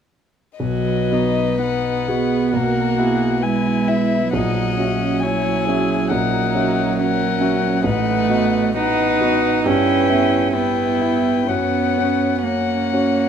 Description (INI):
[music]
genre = classical, slow romantic movement for piano quintet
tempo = 57-71 BPM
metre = 4/4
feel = rubato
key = B major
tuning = A4 = 440 Hz
[part]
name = dark violin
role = melody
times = 0.6-13.3 s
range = D#5 to G#5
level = -23 LUFS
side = left 10 dB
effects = none
[part]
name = warm cello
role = second line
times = 0.6-13.3 s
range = F#3 to D#4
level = -21 LUFS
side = right 7 dB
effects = none
[part]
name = warm violin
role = second line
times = 0.6-13.3 s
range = G#4 to D#5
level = -26 LUFS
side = left 4 dB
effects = none
[part]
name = clear concert grand piano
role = accompaniment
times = 0.6-13.3 s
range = A1 to E5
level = -21 LUFS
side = equal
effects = none
[part]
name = warm viola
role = accompaniment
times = 0.6-13.3 s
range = C#4 to G#4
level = -27 LUFS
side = right 3 dB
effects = none
[sound]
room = light reverb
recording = close, detailed microphones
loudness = -16 LUFS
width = side -8 dB against mid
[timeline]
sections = 0.6-13.3 A section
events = none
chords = 0.6 B; 2.5 E/B; 4.3 F#7/A#; 7.8 B7/A; 9.7 Em/G; 11.5 F#